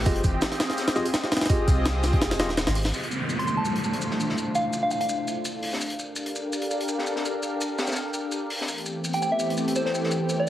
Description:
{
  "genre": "drum and bass, jungle",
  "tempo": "167 BPM",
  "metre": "4/4",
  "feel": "swing 54% on 16ths",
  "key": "D minor",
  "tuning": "A4 = 440 Hz",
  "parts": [
    { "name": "lush unison pad", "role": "sustained chords", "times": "0.0-10.5 s", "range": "E3 to F5", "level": "-28 LUFS", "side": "equal", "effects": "chorus, phaser" },
    { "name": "soft dub sub bass", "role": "bass", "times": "0.0-2.9 s", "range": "Eb1 to C2", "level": "-26 LUFS", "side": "equal", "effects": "none" },
    { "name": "tine electric piano", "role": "stabs", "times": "0.1-2.5 s", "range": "F4 to Eb5", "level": "-32 LUFS", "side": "equal", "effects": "medium stereo tremolo, dub echo" },
    { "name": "crunchy breakbeat drum kit", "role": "drums", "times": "0.1-10.4 s", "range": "hi-hat, shaker, snare drum", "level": "-32 LUFS", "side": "left 1 dB", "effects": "high-pass filter on hats, high-pass filter on snare, high-pass filter on perc, high-pass filter on room" },
    { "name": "jungle sampler-style drum kit", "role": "drums", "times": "0.1-2.9 s", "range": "hi-hat, kick drum, snare drum", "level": "-24 LUFS", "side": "equal", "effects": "none" },
    { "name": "downlifter", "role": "sound effects", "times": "2.9-5.8 s", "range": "none", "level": "-30 LUFS", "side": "equal", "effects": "none" },
    { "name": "soft synth bell", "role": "melody", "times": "3.4-5.3, 9.1-10.5 s", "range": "C5 to C6", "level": "-28 LUFS", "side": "equal", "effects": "chorus, dub echo" }
  ],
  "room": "moderate digital room reverb, RT60 1.0 s, studio reverb",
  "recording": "heavily compressed radio sound, multiband compression, vinyl crackle",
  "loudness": "-23 LUFS",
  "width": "side -12 dB against mid",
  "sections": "0.0-2.9 A section; 2.9-10.5 B section",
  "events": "break 2.2-2.9; filter sweep on analog synth pad 2.9-10.5",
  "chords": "0.1 Fm9; 2.9 Dm9; 5.8 Gm9; 8.7 Am9"
}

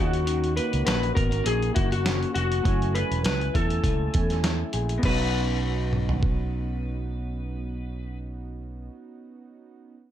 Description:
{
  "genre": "indie pop, bedroom pop",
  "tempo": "101 BPM",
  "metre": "4/4",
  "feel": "swing 55% on 16ths",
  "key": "B major",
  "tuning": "A4 = 440 Hz",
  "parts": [
    { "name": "electric slide guitar", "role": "melody", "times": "0.0-8.2 s", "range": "F#4 to B4", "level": "-29 LUFS", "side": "left 3 dB", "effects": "wide subtle chorus" },
    { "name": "electric guitar through a small old amp", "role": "accompaniment", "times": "0.0-9.0 s", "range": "B2 to G#4", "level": "-34 LUFS", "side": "left 5 dB", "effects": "lush chorus, warbly pitch drift" },
    { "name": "warbly lo-fi synth keys", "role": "accompaniment", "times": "0.0-9.9 s", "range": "A3 to G#5", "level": "-35 LUFS", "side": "right 6 dB", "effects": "chorus, cassette tape" },
    { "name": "fingered electric bass", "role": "bass", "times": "0.0-8.9 s", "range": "E1 to E2", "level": "-28 LUFS", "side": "equal", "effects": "none" },
    { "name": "dusty soul sampler-style drum kit", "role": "drums", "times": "0.1-6.4 s", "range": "crash cymbal, hi-hat, kick drum, snare drum, toms", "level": "-27 LUFS", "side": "equal", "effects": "overdrive" }
  ],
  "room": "light reverb",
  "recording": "none",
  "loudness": "-23 LUFS",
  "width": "side -11 dB against mid",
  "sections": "0.0-5.0 A section; 5.0-7.4 B section",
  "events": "none",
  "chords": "0.0 D#m7; 2.7 F#m9; 5.0 B"
}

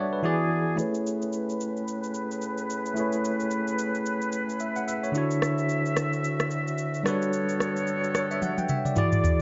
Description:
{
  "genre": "amapiano",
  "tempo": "110 BPM",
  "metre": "4/4",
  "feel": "swing 58% on 16ths",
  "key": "A major",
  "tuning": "A4 = 440 Hz",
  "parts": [
    { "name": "bell-like tine electric piano", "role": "accompaniment", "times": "0.0-9.4 s", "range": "D3 to A5", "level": "-30 LUFS", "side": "equal", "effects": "low-pass filter" },
    { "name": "clear woodwind section", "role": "sustained chords", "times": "0.0-9.4 s", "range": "D2 to E5", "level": "-34 LUFS", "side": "equal", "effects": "low-pass filter" },
    { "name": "smooth R&B drum kit", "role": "drums", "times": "0.8-9.4 s", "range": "rim click, shaker, toms", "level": "-33 LUFS", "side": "equal", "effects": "none" }
  ],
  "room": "moderate spring reverb, RT60 2.2 s",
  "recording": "nothing above 7.5 kHz",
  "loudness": "-28 LUFS",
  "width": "mono",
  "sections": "0.8-9.4 A section",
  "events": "break 0.0-0.8; filter sweep 0.8-9.4; drum fill 8.4-9.4",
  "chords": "0.2 E7; 0.8 Amaj9; 5.1 Dmaj9; 7.1 Gmaj9#11"
}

